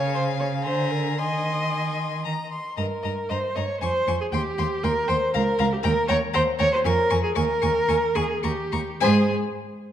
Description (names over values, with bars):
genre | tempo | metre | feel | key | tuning
quick classical-period movement for string quartet | 101-120 BPM | 3/4 | rubato | Ab major | A4 = 440 Hz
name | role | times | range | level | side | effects
rich violin | melody | 0.0-9.3 s | Ab5 to Db6 | -31 LUFS | left 9 dB | none
rich violin | second line | 0.0-9.3 s | C5 to C6 | -32 LUFS | left 4 dB | none
warm viola | accompaniment | 0.0-9.3 s | G4 to Eb5 | -24 LUFS | equal | none
rich cello | bass | 0.0-9.3 s | Db2 to Eb3 | -26 LUFS | right 2 dB | none
room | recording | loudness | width
wet recital hall reverb, RT60 1.6 s | dark, warm production | -21 LUFS | side -10 dB against mid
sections
0.0-9.0 A section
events
slowing down 5.1-9.0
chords
0.0 Dbmaj7; 0.6 Bb7/D; 1.2 Ab/Eb; 2.8 Eb/G; 3.8 Db/F; 4.3 Cm/Eb; 5.3 Bbm/Db; 5.8 Eb; 6.9 Db (rootless); 7.4 Eb7sus4; 8.4 Eb; 9.0 Ab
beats
0.14 0.65 | 1.19 1.73 2.25 | 2.78 3.30 3.82 | 4.33 4.84 5.34 | 5.84 6.35 6.86 | 7.37 7.89 8.45 | 9.02